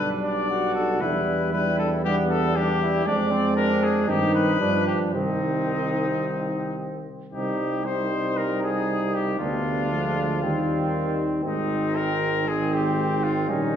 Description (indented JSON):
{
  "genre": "classical, brass quintet",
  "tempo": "116 BPM",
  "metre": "4/4",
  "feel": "rubato",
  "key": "C minor from 3.1 s",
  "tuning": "A4 = 440 Hz",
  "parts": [
    { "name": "bright trumpet", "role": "melody", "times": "0.0-13.8 s", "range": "Eb4 to D5", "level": "-28 LUFS", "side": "left 5 dB", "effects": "none" },
    { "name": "clear flugelhorn", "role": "second line", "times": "0.0-13.8 s", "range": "B3 to F#4", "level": "-29 LUFS", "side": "right 4 dB", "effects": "none" },
    { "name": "warm French horn", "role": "accompaniment", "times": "0.0-13.8 s", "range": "G3 to D4", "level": "-30 LUFS", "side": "left 2 dB", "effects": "none" },
    { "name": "warm euphonium", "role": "accompaniment", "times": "0.0-13.8 s", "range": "Eb3 to Ab3", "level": "-28 LUFS", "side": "right 1 dB", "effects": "none" },
    { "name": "warm tuba", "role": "bass", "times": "0.0-13.8 s", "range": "Ab1 to G2", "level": "-28 LUFS", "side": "right 1 dB", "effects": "none" }
  ],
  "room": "wet recital hall reverb, RT60 1.4 s",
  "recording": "heard from further back in the room, nothing above 7.9 kHz",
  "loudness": "-21 LUFS",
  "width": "side -9 dB against mid",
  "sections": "0.0-7.3 A section; 7.3-13.8 B section",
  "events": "none",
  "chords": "0.0 G/B; 1.0 Em7; 3.1 Dm7b5/F; 4.1 Cm/G; 4.6 G7; 5.1 Cm; 9.4 G7/D; 10.4 Cm/Eb; 11.4 Ab",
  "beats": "0.49 | 1.02 1.53 2.05 2.56 | 3.06 3.57 4.08 4.60 | 5.14 5.69 6.24 6.79 | 7.33 7.86 8.38 8.89 | 9.40 9.92 10.43 10.94 | 11.45 11.96 12.48 12.98 | 13.49"
}